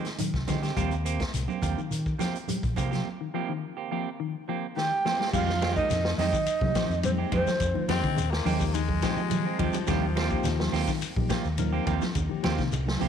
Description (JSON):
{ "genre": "afrobeat", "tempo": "106 BPM", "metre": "4/4", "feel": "straight", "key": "F minor", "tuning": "A4 = 440 Hz", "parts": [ { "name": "mellow electric guitar", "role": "arpeggios", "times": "0.0-13.1 s", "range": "Eb3 to G3", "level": "-34 LUFS", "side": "left 11 dB", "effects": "spring reverb" }, { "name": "clean electric guitar", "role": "stabs", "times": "0.0-13.1 s", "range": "Eb3 to G4", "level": "-33 LUFS", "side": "right 9 dB", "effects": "spring reverb" }, { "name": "vintage drum kit", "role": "drums", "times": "0.0-13.1 s", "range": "crash cymbal, hi-hat, kick drum, ride cymbal, snare drum", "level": "-33 LUFS", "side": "equal", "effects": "none" }, { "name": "shekere", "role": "percussion", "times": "0.1-13.1 s", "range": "none", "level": "-39 LUFS", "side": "left 8 dB", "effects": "none" }, { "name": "congas", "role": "percussion", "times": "0.2-13.1 s", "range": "none", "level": "-35 LUFS", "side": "right 10 dB", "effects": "none" }, { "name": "fingered electric bass", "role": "bass", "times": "0.3-13.1 s", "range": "Bb1 to F3", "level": "-29 LUFS", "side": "left 1 dB", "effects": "none" }, { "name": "breathy mellow long shakuhachi", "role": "melody", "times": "4.8-7.9 s", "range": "C5 to G5", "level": "-28 LUFS", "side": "right 2 dB", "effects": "none" }, { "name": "bright alto saxophone", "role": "second line", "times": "4.8-7.9 s", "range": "C4 to G4", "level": "-37 LUFS", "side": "right 10 dB", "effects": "none" }, { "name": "mellow tine electric piano", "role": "accompaniment", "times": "5.3-13.1 s", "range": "F3 to Bb4", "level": "-36 LUFS", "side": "left 12 dB", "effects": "medium stereo tremolo" }, { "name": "raspy baritone saxophone", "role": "second line", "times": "7.9-11.0 s", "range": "F3 to C4", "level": "-33 LUFS", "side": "left 12 dB", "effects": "none" } ], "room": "light reverb, small room ambience", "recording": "1960s-style stereo with parts hard left and right", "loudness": "-25 LUFS", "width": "side -8 dB against mid", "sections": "0.0-5.3 A section; 5.3-13.1 B section", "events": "drum fill 4.8-5.3", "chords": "0.0 Fm9 (rootless); 0.8 Eb69; 5.3 Fm9; 9.9 Eb69", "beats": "0.19 | 0.76 1.33 1.91 2.48 | 3.05 3.62 4.19 4.76 | 5.33 5.90 6.47 7.04 | 7.61 8.18 8.74 9.31 | 9.88 10.45 11.02 11.58 | 12.15 12.72" }